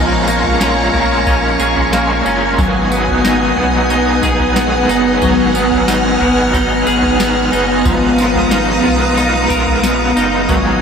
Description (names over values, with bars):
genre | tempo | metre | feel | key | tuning
dream pop | 91 BPM | 4/4 | straight | G# dorian | A4 = 441 Hz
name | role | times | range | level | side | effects
raw garage guitar | accompaniment | 0.0-10.8 s | G#2 to A#4 | -18 LUFS | right 2 dB | overdrive, tremolo, analog chorus
soft string machine | sustained chords | 0.0-10.8 s | B3 to E#6 | -15 LUFS | equal | ensemble chorus
clean electric guitar | arpeggios | 0.0-10.8 s | E#3 to A#4 | -17 LUFS | left 2 dB | lush chorus, analog delay
sub bass with octave | bass | 0.0-10.8 s | F#1 to B1 | -22 LUFS | equal | none
soft vintage rhythm box | drums | 0.3-10.6 s | kick drum, snare drum, tambourine, toms | -21 LUFS | equal | none
room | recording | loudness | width
wet huge ambient reverb, RT60 8.5 s | dreamy mix soaked in reverb | -11 LUFS | side -6 dB against mid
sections
0.0-10.8 A section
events
none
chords
0.0 A#m7; 2.6 G#m7; 7.9 C#13/G#